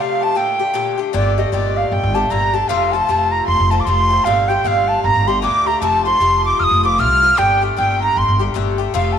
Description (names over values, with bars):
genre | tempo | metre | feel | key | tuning
celtic folk, Celtic hornpipe | 154 BPM | 4/4 | swing 62% on 8ths | G minor | A4 = 440 Hz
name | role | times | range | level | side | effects
wooden flute | melody | 0.0-9.2 s | D5 to F6 | -16 LUFS | right 1 dB | none
concert harp | second line | 0.0-9.2 s | C5 to F6 | -26 LUFS | right 10 dB | none
rich fiddle | second line | 0.0-9.2 s | D5 to F6 | -29 LUFS | left 9 dB | none
Irish bouzouki | accompaniment | 0.0-9.2 s | Bb2 to G4 | -22 LUFS | left 11 dB | none
upright bass | bass | 1.1-9.2 s | F1 to D2 | -20 LUFS | equal | none
room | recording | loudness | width
moderate plate reverb, RT60 3.6 s | 1960s-style stereo with parts hard left and right | -14 LUFS | side -8 dB against mid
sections
0.0-1.1 A section; 1.1-9.2 B section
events
break 0.0-1.1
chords
0.4 Gmadd9; 2.7 F; 4.3 Gmadd9; 5.8 F; 7.4 Gmadd9